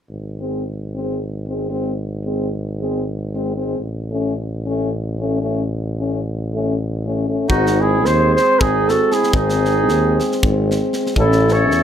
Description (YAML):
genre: balkan folk, Balkan brass band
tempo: 227 BPM (eighths)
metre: 7/8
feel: straight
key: G# phrygian dominant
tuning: A4 = 440 Hz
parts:
  - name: warm tuba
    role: bass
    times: 0.1-11.8 s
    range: G#1 to E2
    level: -21 LUFS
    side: equal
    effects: none
  - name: mellow French horn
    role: accompaniment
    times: 0.4-11.8 s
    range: B#3 to C#4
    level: -24 LUFS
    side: left 6 dB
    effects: none
  - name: warm euphonium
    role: accompaniment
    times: 0.4-11.8 s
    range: G#3 to A3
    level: -24 LUFS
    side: right 3 dB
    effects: none
  - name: mellow flugelhorn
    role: melody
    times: 7.5-11.8 s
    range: F#4 to C#5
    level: -17 LUFS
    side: right 2 dB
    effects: none
  - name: warm clarinet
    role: second line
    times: 7.5-11.8 s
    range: D#4 to A4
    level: -22 LUFS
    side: left 2 dB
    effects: none
  - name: tight metal drum kit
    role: percussion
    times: 7.5-11.8 s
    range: kick drum, snare drum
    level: -22 LUFS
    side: equal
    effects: none
room: light reverb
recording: none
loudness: -16 LUFS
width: side -9 dB against mid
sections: 0.1-7.5 A section; 7.5-11.8 B section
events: none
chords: 0.1 G#; 3.8 A; 7.5 G#; 11.2 A